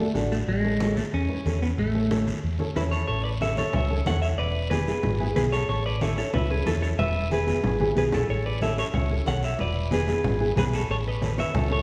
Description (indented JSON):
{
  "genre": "latin, cumbia",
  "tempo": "184 BPM",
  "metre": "4/4",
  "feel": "straight",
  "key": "A major",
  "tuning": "A4 = 439 Hz",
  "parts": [
    { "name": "clean electric guitar", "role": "melody", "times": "0.0-11.8 s", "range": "G#3 to F#5", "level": "-30 LUFS", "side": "equal", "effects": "spring reverb" },
    { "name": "nylon-string guitar", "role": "accompaniment", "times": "0.0-11.8 s", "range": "B3 to B4", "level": "-32 LUFS", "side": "equal", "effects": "none" },
    { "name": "hollow-body short-scale fingered electric bass", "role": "bass", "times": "0.1-11.8 s", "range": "E1 to E2", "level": "-30 LUFS", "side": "equal", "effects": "none" },
    { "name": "congas", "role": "percussion", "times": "0.1-11.7 s", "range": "none", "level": "-33 LUFS", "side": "equal", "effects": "none" },
    { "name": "guiro", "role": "percussion", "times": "0.2-11.8 s", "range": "none", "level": "-44 LUFS", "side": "equal", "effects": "none" }
  ],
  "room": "wet concert hall reverb, RT60 1.8 s",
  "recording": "recorded in a church or concert hall",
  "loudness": "-25 LUFS",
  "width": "mono",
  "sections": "0.0-3.1 A section; 3.1-11.8 B section",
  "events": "drum fill 7.8-8.3",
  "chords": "0.5 A; 4.4 E7; 5.7 A; 7.0 E; 8.3 A; 9.6 E7; 10.9 A"
}